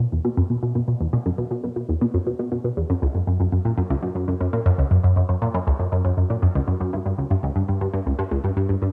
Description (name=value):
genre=ambient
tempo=119 BPM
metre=4/4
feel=straight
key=unclear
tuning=A4 = 438 Hz
part: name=tight sequenced synth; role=solo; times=0.0-8.9 s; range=C#2 to B2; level=-22 LUFS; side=equal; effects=chorus, phaser, delay
room=moderate spring reverb, RT60 1.4 s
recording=home recording on cassette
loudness=-22 LUFS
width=mono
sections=0.0-8.9 A section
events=none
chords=none